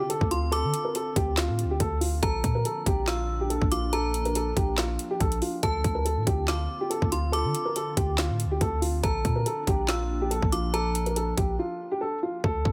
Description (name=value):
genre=hip hop, trap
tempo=141 BPM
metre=4/4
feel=half-time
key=unclear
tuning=A4 = 440 Hz
part: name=dark concert grand piano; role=melody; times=0.0-12.7 s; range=F4 to Bb4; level=-32 LUFS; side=equal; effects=low-pass filter
part: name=metallic FM bell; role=second line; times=0.0-11.1 s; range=A5 to E6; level=-37 LUFS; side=equal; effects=chorus, delay
part: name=glassy FM pad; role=sustained chords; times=0.0-12.4 s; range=D3 to F4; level=-39 LUFS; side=equal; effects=ensemble chorus, built-in reverb
part: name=trap drum kit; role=drums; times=0.1-12.7 s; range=handclaps, hi-hat, kick drum, snare drum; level=-31 LUFS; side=equal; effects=none
part: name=warm 808-style bass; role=bass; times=0.2-12.7 s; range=Bb1 to D3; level=-31 LUFS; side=equal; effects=none
room=digital ambience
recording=none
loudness=-27 LUFS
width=mono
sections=0.0-12.4 A section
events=break 11.6-12.4; hi-hats muted 12.4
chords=0.0 Dm7; 2.2 Bb; 5.6 Dm7; 9.0 Bb